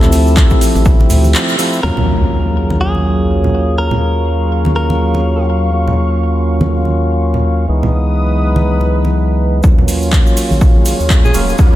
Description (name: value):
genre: deep house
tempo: 123 BPM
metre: 4/4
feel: swing 58% on 16ths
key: unclear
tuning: A4 = 440 Hz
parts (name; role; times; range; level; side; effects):
- direct-recorded clean electric guitar; melody; 0.0-5.5 s; Ab4 to Bb4; -23 LUFS; left 1 dB; spring reverb, ping-pong delay
- percussive tonewheel organ; stabs; 0.0-11.8 s; Fb3 to F4; -18 LUFS; equal; slow rotary speaker, vintage 12-bit sampler grit, sidechain pumping, low-pass filter, dub echo
- round analog bass; bass; 0.0-11.8 s; Eb1 to Eb2; -15 LUFS; equal; sidechain pumping
- deep house drum kit; drums; 0.0-1.7, 9.9-11.5 s; handclaps, hi-hat; -20 LUFS; equal; overdrive, studio reverb
- congas; percussion; 0.0-11.8 s; none; -20 LUFS; right 1 dB; none
- tube shaker; percussion; 0.0-1.8, 9.6-11.7 s; none; -27 LUFS; right 4 dB; none
- warbly tape-like pad; texture; 0.0-11.8 s; Gb3 to F5; -24 LUFS; right 1 dB; chorus, built-in reverb, sidechain pumping
- electronic kick drum; drums; 0.4-1.0, 9.6-11.7 s; none; -10 LUFS; equal; studio reverb
- warm analog pad; sustained chords; 1.8-11.8 s; Gb3 to Eb6; -25 LUFS; right 1 dB; chorus, sidechain pumping
- impact and riser; sound effects; 1.8-3.8, 10.7-11.8 s; none; -21 LUFS; equal; none
- clear alto saxophone; melody; 11.2-11.4 s; Ab4; -21 LUFS; right 1 dB; vintage 12-bit sampler grit, tape echo
room: light reverb, digital ambience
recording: none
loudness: -10 LUFS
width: side -14 dB against mid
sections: 0.0-1.8 A section; 1.8-9.6 B section; 9.6-11.8 C section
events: break 1.3-1.8; band accent 1.3; impact 1.8-3.8; filter sweep on analog synth pad 1.8-9.6; build-up 9.6-11.8; filter sweep on tonewheel organ 9.6-11.8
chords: 0.0 Dm9; 1.8 Ebm9; 7.7 Dbm9; 9.6 Ebm9